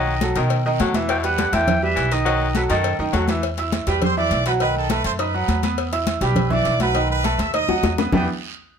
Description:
latin, salsa; 205 BPM; 4/4; straight; E minor; A4 = 440 Hz
clear oboe; melody; 0.0-3.0 s; A4 to G5; -24 LUFS; left 1 dB
raspy baritone saxophone; second line; 0.0-3.3 s; B2 to F#3; -27 LUFS; left 7 dB
bright grand piano; accompaniment; 0.0-8.3 s; D#3 to E6; -22 LUFS; right 3 dB
upright bass; bass; 0.0-8.3 s; B1 to B2; -24 LUFS; equal
congas; percussion; 0.1-8.2 s; -25 LUFS; left 1 dB
cowbell and bongos; percussion; 0.2-8.2 s; -28 LUFS; left 10 dB
guiro; percussion; 0.2-8.2 s; -37 LUFS; right 8 dB
bright trumpet section; melody; 3.9-8.3 s; A4 to E6; -24 LUFS; right 3 dB
moderate studio reverb, RT60 0.7 s; faint mains hum; -18 LUFS; side -7 dB against mid
0.0-3.4 A section; 3.4-8.1 B section
drum fill 7.7-8.1
0.0 B7; 1.1 Em7; 2.3 B7; 3.4 Em7; 4.6 B7; 5.8 Em7; 7.0 B7; 8.1 Em7

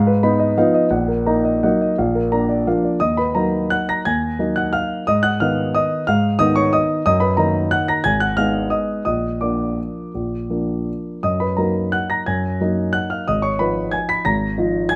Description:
classical, piano waltz; 157-194 BPM; 3/4; rubato; Eb minor; A4 = 440 Hz
warm concert grand piano; solo; 0.0-15.0 s; Ab1 to Cb7; -19 LUFS; equal
light reverb; close, detailed microphones; -19 LUFS; mono
0.0-3.0 A section; 3.0-15.0 B section
0.0 Fm7b5/Ab; 0.9 Ebm/Bb; 2.0 Bb; 3.0 Ebm; 5.1 Abm; 7.0 Ebm/Gb; 8.0 Abm; 9.0 Bb; 11.2 Ebm/Gb; 13.3 Fm7b5/Ab

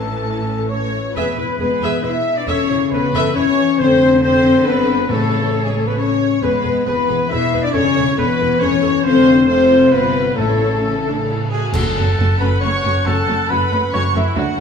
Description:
cinematic, heroic adventure film score; 136 BPM; 3/4; straight; A major; A4 = 440 Hz
warm symphonic violin section; melody; 0.0-14.6 s; G#4 to C#6; -28 LUFS; left 6 dB
rich symphonic violin section; second line; 0.0-14.6 s; C#4 to E5; -26 LUFS; left 2 dB
warm symphonic viola section; accompaniment; 0.0-14.6 s; E3 to E5; -25 LUFS; right 1 dB
mellow French horn section; sustained chords; 0.0-14.5 s; G#3 to A4; -17 LUFS; left 5 dB
warm trumpet section; stabs; 0.0-14.6 s; E4 to E5; -23 LUFS; right 2 dB
clear symphonic double bass section; bass; 0.0-14.6 s; E1 to D2; -24 LUFS; right 3 dB
rich symphonic cello section; bass; 0.0-14.4 s; D2 to G#3; -24 LUFS; right 1 dB
bright large flute ensemble; second line; 0.7-14.6 s; G#4 to C#6; -27 LUFS; left 1 dB
clear oboe; second line; 0.7-14.6 s; G#4 to F#5; -27 LUFS; right 1 dB
warm clarinet; second line; 0.7-14.6 s; C#4 to E5; -27 LUFS; left 2 dB
timpani; percussion; 5.1-5.7, 10.4-11.0 s; A2; -25 LUFS; left 2 dB
cymbal swell, clash cymbals and concert bass drum; percussion; 9.1-12.6 s; -27 LUFS; equal
wet scoring stage reverb, RT60 1.8 s; small room ambience; -14 LUFS; side -6 dB against mid
0.0-1.2 A section; 1.2-11.7 B section; 11.7-14.6 C section
band accent 11.7-12.2
0.0 A; 1.2 E; 2.5 A/E; 3.8 F; 5.1 A; 6.4 E; 7.7 A/E; 9.1 F; 10.4 A; 11.7 F#m

